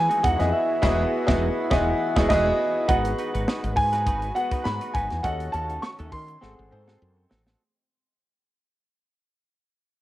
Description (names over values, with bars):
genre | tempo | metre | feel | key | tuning
polished 1980s jazz-funk pop | 102 BPM | 4/4 | swing 54% on 16ths | unclear | A4 = 439 Hz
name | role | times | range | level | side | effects
warm concert grand piano | melody | 0.0-7.3 s | D#5 to C#6 | -25 LUFS | right 1 dB | cassette tape
clear grand piano | accompaniment | 0.0-7.6 s | B3 to F#5 | -27 LUFS | left 1 dB | wide subtle chorus, cassette tape, plate reverb
lush unison pad | sustained chords | 0.0-7.6 s | D#3 to B4 | -37 LUFS | left 1 dB | none
woody fretless electric bass | bass | 0.0-7.5 s | E1 to D#3 | -28 LUFS | equal | analog chorus
clean electric guitar | riff | 0.1-7.6 s | G#3 to B4 | -35 LUFS | right 3 dB | wide subtle chorus, cassette tape
crisp fusion drum kit | drums | 0.1-7.6 s | crash cymbal, hi-hat, kick drum, snare drum | -27 LUFS | equal | cassette tape
room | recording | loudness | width
light reverb | home recording on cassette | -21 LUFS | side -15 dB against mid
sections
0.0-2.9 A section; 2.9-7.6 B section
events
band accent 0.5-2.9; fade-out 2.9-7.6; drum fill 6.4-7.6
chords
0.0 Emaj9; 2.9 G#m7; 5.2 D#m7b5; 6.4 G#7b9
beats
| 0.53 1.12 1.71 2.30 | 2.89 3.48 4.07 4.66 | 5.24 5.83 6.42 7.01